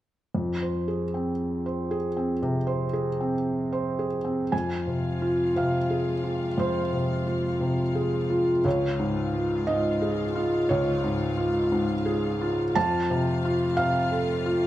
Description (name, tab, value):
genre	neoclassical piano and strings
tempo	58 BPM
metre	4/4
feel	rubato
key	F minor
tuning	A4 = 441 Hz
part	felt-muted upright piano	accompaniment	0.3-14.7 s	Db2 to A5	-24 LUFS	equal	none
part	warm chamber string section	sustained chords	4.5-14.7 s	Ab3 to F5	-36 LUFS	left 2 dB	none
room	moderate large studio reverb, RT60 1.4 s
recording	none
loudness	-24 LUFS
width	side -14 dB against mid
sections	0.3-4.5 A section; 4.5-14.7 B section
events	none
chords	0.3 Fm; 8.7 Db; 12.8 F